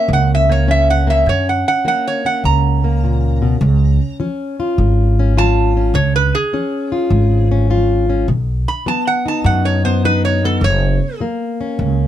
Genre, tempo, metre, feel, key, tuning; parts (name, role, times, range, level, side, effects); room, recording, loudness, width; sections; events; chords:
acoustic country blues, solo or duo; 103 BPM; 4/4; swing 67% on 8ths; F# major; A4 = 440 Hz
metal-body resonator slide guitar; melody; 0.0-11.2 s; G#4 to B5; -17 LUFS; right 3 dB
fingerpicked plugged-in steel-string acoustic guitar; accompaniment; 0.0-12.1 s; F#2 to E#4; -20 LUFS; left 3 dB
upright bass; bass; 0.1-12.1 s; F#1 to F#2; -14 LUFS; equal
light reverb; close, detailed microphones; -13 LUFS; side -11 dB against mid
0.0-12.1 A section
resonator guitar played with a steel bar solo 0.0-12.1
0.0 F#; 3.6 C#; 8.3 B; 10.6 F#